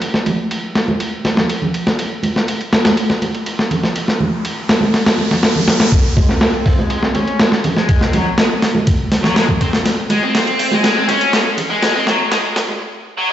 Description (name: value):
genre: breakbeat, breaks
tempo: 122 BPM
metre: 4/4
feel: straight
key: unclear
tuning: A4 = 440 Hz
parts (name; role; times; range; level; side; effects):
- breakbeat sampler-style drum kit; drums; 0.0-12.7 s; hi-hat, kick drum, ride cymbal, snare drum; -15 LUFS; equal; low-pass filter on snare, low-pass filter on cymbals, low-pass filter on hats, low-pass filter on kick
- congas; percussion; 0.3-12.8 s; none; -21 LUFS; right 2 dB; none
- riser; sound effects; 3.2-5.9 s; none; -26 LUFS; right 2 dB; none
- distorted electric guitar; riff; 6.2-13.3 s; F#3 to C#4; -18 LUFS; left 1 dB; overdrive, low-pass filter, digital delay
room: wet lush hall reverb, RT60 1.8 s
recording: played on a big sound system in a bare room, large studio reverb, high-pass filter, nothing above 7.9 kHz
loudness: -13 LUFS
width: side -11 dB against mid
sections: 0.0-5.9 A section; 5.9-13.3 B section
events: riser 3.2-5.9; build-up 5.9-13.3; filter sweep on drum 5.9-13.3; filter sweep on distorted electric guitar 5.9-13.3; filter sweep 5.9-13.3; drum fill 9.9-12.8; break 12.8-13.3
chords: none